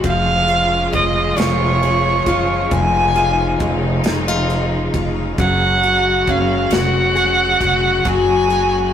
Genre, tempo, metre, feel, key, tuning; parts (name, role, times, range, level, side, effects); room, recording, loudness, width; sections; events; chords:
six-eight pop ballad; 45 BPM (dotted quarters); 6/8; straight; A4 = 440 Hz
picked plugged-in steel-string acoustic guitar; accompaniment; 0.0-8.9 s; E#3 to G#4; -21 LUFS; left 4 dB
bright studio string section; sustained chords; 0.0-8.9 s; C#3 to F#4; -23 LUFS; equal
upright bass; bass; 0.0-8.9 s; E#1 to F#1; -21 LUFS; right 1 dB
modern studio drum kit; drums; 0.0-8.7 s; kick drum, ride cymbal, snare drum; -26 LUFS; equal
warm violin; melody; 0.1-8.9 s; C#5 to G#5; -17 LUFS; right 1 dB
moderate stone room reverb, RT60 1.1 s; rough rehearsal-room recording, tube saturation; -14 LUFS; side -9 dB against mid
0.0-8.9 A section
0.0 C#/E#; 5.4 F#sus2